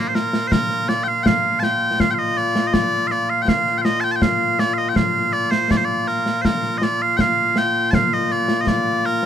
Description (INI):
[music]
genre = scottish traditional, Scottish pipe music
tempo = 81 BPM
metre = 2/4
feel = straight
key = Bb major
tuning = A4 = 436 Hz
[part]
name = loud bright bagpipes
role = melody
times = 0.0-9.3 s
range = Bb2 to A5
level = -18 LUFS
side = equal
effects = none
[part]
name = concert snare drum and concert bass drum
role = drums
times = 0.2-9.3 s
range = none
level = -22 LUFS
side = equal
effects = none
[sound]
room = little or no reverb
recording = minimal, uncompressed stereo recording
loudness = -17 LUFS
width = side -9 dB against mid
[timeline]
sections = 0.5-9.3 A section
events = none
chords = none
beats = | 0.52 1.26 | 2.00 2.74 | 3.48 4.22 | 4.96 5.70 | 6.44 7.18 | 7.92 8.66